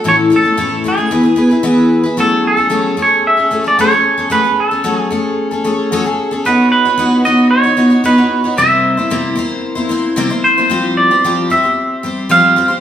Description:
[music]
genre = rock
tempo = 112 BPM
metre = 4/4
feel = straight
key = unclear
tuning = A4 = 439 Hz
[part]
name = picked twelve-string acoustic guitar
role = accompaniment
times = 0.0-12.8 s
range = A2 to C#5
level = -13 LUFS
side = left 1 dB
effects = none
[part]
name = twangy electric guitar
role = melody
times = 0.1-12.8 s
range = G#4 to F5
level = -12 LUFS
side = right 2 dB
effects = none
[sound]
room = wet large studio reverb, RT60 1.3 s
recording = band playing live in one room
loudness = -10 LUFS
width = side -10 dB against mid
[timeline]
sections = 0.0-2.2 A section; 2.2-10.7 B section; 10.7-12.8 C section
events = none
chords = 0.0 A; 1.1 E; 2.2 F#madd9; 6.5 Badd9; 8.6 C7; 10.7 Fsus2

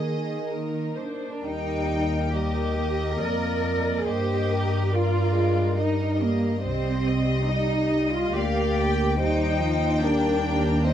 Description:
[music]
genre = classical, slow romantic movement for string orchestra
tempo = 70 BPM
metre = 3/4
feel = uneven beats, rubato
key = Eb major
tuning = A4 = 440 Hz
[part]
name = warm studio violin section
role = melody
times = 0.0-10.9 s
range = D5 to G5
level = -33 LUFS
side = left 4 dB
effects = none
[part]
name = warm studio violin section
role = second line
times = 0.0-10.9 s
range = Ab4 to Eb5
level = -32 LUFS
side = left 2 dB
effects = none
[part]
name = dark chamber viola section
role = accompaniment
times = 0.0-10.9 s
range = F3 to Eb4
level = -30 LUFS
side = right 2 dB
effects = none
[part]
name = warm studio cello section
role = bass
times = 0.0-10.9 s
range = Eb3 to Bb4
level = -27 LUFS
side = right 1 dB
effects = none
[part]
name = rich studio double bass section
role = bass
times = 1.4-10.9 s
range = C2 to G2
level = -26 LUFS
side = equal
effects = none
[sound]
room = light reverb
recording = dark, warm production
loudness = -22 LUFS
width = side -10 dB against mid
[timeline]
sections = 0.0-1.4 A section; 1.4-10.9 A section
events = none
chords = 0.0 Eb5; 1.4 Eb; 4.1 Eb/G; 6.6 Cm7; 9.2 Cm/Eb

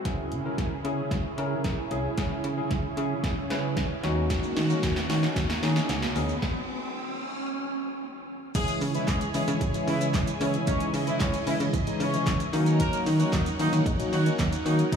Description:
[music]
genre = dance-pop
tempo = 113 BPM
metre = 4/4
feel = straight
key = C# dorian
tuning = A4 = 442 Hz
[part]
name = filtered supersaw swell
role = sustained chords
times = 0.0-15.0 s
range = C#3 to G#5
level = -34 LUFS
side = right 2 dB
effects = phaser, sidechain pumping
[part]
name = barky tine electric piano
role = accompaniment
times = 0.1-15.0 s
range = E3 to B4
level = -32 LUFS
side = left 4 dB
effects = analog chorus, sidechain pumping
[part]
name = slap-like FM bass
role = bass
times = 0.1-15.0 s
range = G#1 to D#3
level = -28 LUFS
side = right 1 dB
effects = sidechain pumping
[part]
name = deep house drum kit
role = drums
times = 0.1-15.0 s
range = crash cymbal, handclaps, hi-hat, kick drum, shaker, snare drum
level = -30 LUFS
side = right 1 dB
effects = none
[part]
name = riser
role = sound effects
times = 2.9-7.5 s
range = none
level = -37 LUFS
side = right 1 dB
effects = none
[part]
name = warm horn section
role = melody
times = 8.6-15.0 s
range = E3 to D#5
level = -32 LUFS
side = right 1 dB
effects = sidechain pumping, analog delay
[sound]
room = moderate cathedral reverb, RT60 6.7 s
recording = dreamy mix soaked in reverb, small room reverb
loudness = -24 LUFS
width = side -7 dB against mid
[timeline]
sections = 0.1-8.6 A section; 8.6-15.0 B section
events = build-up 0.1-8.6; drum fill 0.1-6.4; riser 2.9-8.6; stop 6.4-8.6; drop 8.6-15.0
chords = 0.1 C#m; 4.0 D#m7; 8.6 C#m; 12.5 D#m7

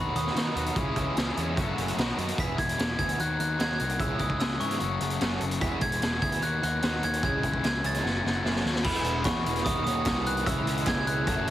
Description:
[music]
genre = indie rock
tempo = 148 BPM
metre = 4/4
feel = straight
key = E major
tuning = A4 = 439 Hz
[part]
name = glockenspiel with hard plastic mallets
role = melody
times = 0.0-11.5 s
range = B5 to B6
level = -31 LUFS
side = right 1 dB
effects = none
[part]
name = fuzz guitar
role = riff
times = 0.0-11.5 s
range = E2 to G#4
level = -33 LUFS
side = left 7 dB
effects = distortion
[part]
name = overdriven electric guitar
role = riff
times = 0.0-11.5 s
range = D#3 to G#4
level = -35 LUFS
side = right 8 dB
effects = ensemble chorus, analog delay
[part]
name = fuzz picked electric bass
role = bass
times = 0.0-11.5 s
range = E1 to D#3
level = -32 LUFS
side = equal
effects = overdrive
[part]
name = raw garage drum kit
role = drums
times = 0.2-11.5 s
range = crash cymbal, hi-hat, kick drum, snare drum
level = -30 LUFS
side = equal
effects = none
[part]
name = group handclap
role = percussion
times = 9.3-11.0 s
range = none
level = -38 LUFS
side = right 3 dB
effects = none
[sound]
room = light reverb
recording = heavily compressed radio sound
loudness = -25 LUFS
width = side -13 dB against mid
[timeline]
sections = 0.0-2.4 A section; 2.4-8.9 B section; 8.9-11.5 C section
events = drum fill 8.0-8.9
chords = 0.0 B/D#; 0.8 C#madd9; 1.6 F#m; 2.0 B; 2.4 E; 3.2 B/D#; 4.0 C#m; 4.8 F#m; 5.6 E; 6.4 B/D#; 7.2 C#m; 8.0 F#m; 8.9 E; 9.7 Badd9/D#; 10.5 C#m

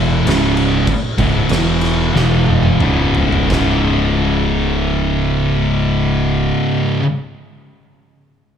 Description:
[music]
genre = stoner and doom metal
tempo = 84-101 BPM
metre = 4/4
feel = straight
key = C# minor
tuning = A4 = 441 Hz
[part]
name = thick fuzz guitar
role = riff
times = 0.0-7.0 s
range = C#2 to E3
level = -18 LUFS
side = left 7 dB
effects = distortion, slapback echo
[part]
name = thick fuzz guitar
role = riff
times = 0.0-7.0 s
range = C#2 to E3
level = -19 LUFS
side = right 7 dB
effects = distortion
[part]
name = thick fuzz guitar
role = riff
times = 0.0-7.0 s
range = C#2 to E3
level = -20 LUFS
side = equal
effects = distortion, slapback echo
[part]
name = growling fingered electric bass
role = bass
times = 0.0-6.5 s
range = C#1 to E1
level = -20 LUFS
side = equal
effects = overdrive
[part]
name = oversized low-tuned drum kit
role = drums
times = 0.3-3.7 s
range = china cymbal, crash cymbal, kick drum, snare drum, toms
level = -21 LUFS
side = equal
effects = none
[sound]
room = studio reverb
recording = live gig heard through the venue's PA, club reverb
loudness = -13 LUFS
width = side -8 dB against mid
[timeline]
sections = 0.0-3.5 A section; 3.5-6.3 B section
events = slowing down 0.0-3.5; drum fill 2.1-3.5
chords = 0.3 C#5; 1.5 E5; 2.8 C#5

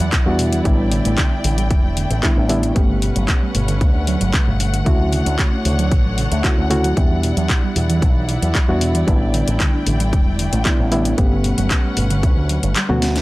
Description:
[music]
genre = nu-disco, nu disco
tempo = 114 BPM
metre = 4/4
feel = straight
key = unclear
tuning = A4 = 440 Hz
[part]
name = reed electric piano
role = accompaniment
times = 0.0-13.2 s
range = G3 to G4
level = -23 LUFS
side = equal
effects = sidechain pumping, analog delay
[part]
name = muted studio string section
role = sustained chords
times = 0.0-13.2 s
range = D3 to G5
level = -26 LUFS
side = left 1 dB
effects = sidechain pumping
[part]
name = soft round pluck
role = arpeggios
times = 0.0-13.2 s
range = B2 to D4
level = -25 LUFS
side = right 2 dB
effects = analog chorus, sidechain pumping, analog delay
[part]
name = picked electric bass with an envelope filter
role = bass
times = 0.0-13.2 s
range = E1 to E2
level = -19 LUFS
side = equal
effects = sidechain pumping
[part]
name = house drum kit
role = drums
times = 0.0-13.2 s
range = handclaps, hi-hat, snare drum, toms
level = -24 LUFS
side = left 1 dB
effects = none
[part]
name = electronic kick drum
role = drums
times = 0.1-12.3 s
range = none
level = -17 LUFS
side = equal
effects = none
[sound]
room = digital ambience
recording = dry, gritty hardware recording, transformer saturation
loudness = -15 LUFS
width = side -19 dB against mid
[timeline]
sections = 0.0-13.2 A section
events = kick drops out 12.8-13.2; drum fill 12.9-13.2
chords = 0.0 Em9; 0.7 A7sus4; 2.8 Gmaj9#11; 4.9 Dmaj7; 7.0 Em9; 9.1 A7sus4; 11.2 Gmaj9#11

